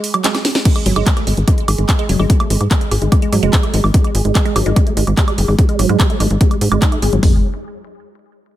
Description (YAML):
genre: psychedelic trance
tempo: 146 BPM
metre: 4/4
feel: straight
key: unclear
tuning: A4 = 440 Hz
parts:
  - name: woody wave-folded pluck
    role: riff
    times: 0.0-7.4 s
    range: F#3 to G#4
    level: -20 LUFS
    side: moving between left 3 dB and right 5 dB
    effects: chorus, auto-pan, sidechain pumping, digital delay
  - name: techno drum kit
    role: drums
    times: 0.0-7.2 s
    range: crash cymbal, handclaps, hi-hat, snare drum, woodblock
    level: -20 LUFS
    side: right 2 dB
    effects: none
  - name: techno drum kit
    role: drums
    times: 0.7-7.3 s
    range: hi-hat, kick drum, toms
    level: -14 LUFS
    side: equal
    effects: none
  - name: tight sequencer bass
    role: bass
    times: 0.9-7.4 s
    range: F#1 to G#2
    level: -15 LUFS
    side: equal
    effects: none
room: little or no reverb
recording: none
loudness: -12 LUFS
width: side -13 dB against mid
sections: 0.7-7.2 A section; 7.2-8.6 B section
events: break 0.0-0.7; drum fill 0.2-0.7; filter sweep on synth arpeggio sound 0.7-7.2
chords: 0.0 G#5; 7.2 N.C.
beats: 0.24 | 0.65 1.06 1.48 1.89 | 2.30 2.71 3.12 3.53 | 3.94 4.35 4.76 5.17 | 5.58 6.00 6.41 6.82 | 7.23